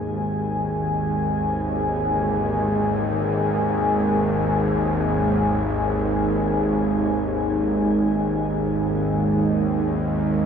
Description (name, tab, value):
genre	dark ambient drone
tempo	free time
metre	none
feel	none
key	unclear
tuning	A4 = 440 Hz
part	dark analog pad	sustained chords	0.0-10.5 s	G#3 to G#5	-22 LUFS	right 1 dB	chorus, shimmer reverb
part	bright grand piano	arpeggios	0.0-10.5 s	none	barely audible	none	none
part	bowed-like drone	drone	0.0-10.5 s	G#1 to D#2	-23 LUFS	left 1 dB	built-in reverb
part	tam-tam	percussion	2.1-2.4 s	none	barely audible	none	none
room	wet lush hall reverb, RT60 2.9 s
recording	dreamy mix soaked in reverb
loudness	-20 LUFS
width	side -7 dB against mid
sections	0.0-10.5 A section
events	none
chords	0.0 G#5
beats	free time